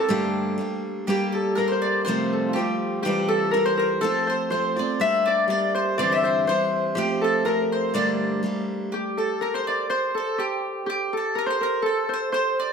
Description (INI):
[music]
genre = celtic folk, Celtic polka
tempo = 122 BPM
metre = 2/4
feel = swing 53% on 8ths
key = G dorian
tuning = A4 = 440 Hz
[part]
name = Celtic harp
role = melody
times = 0.0-12.7 s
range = F4 to E5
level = -24 LUFS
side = left 1 dB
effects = none
[part]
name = mandolin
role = second line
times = 0.0-12.7 s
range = G4 to E5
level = -28 LUFS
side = right 2 dB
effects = none
[part]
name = picked steel-string acoustic guitar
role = accompaniment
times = 0.0-9.4 s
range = F2 to G4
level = -26 LUFS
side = equal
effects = none
[sound]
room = moderate studio reverb, RT60 0.9 s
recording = close, detailed microphones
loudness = -21 LUFS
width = side -6 dB against mid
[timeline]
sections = 0.0-1.1 A section; 1.1-8.9 B section; 8.9-12.7 B section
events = none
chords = 0.1 Gmadd9; 1.1 Gm; 2.1 Fadd9; 3.0 Cadd9; 4.0 F; 5.0 Gm; 6.0 Cadd9/G; 7.0 F; 7.9 Gmadd9; 8.9 N.C.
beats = | 0.09 0.58 | 1.07 1.56 | 2.06 2.55 | 3.04 3.53 | 4.02 4.51 | 5.00 5.50 | 5.99 6.48 | 6.97 7.46 | 7.95 8.44 | 8.93 9.41 | 9.90 10.39 | 10.88 11.37 | 11.86 12.34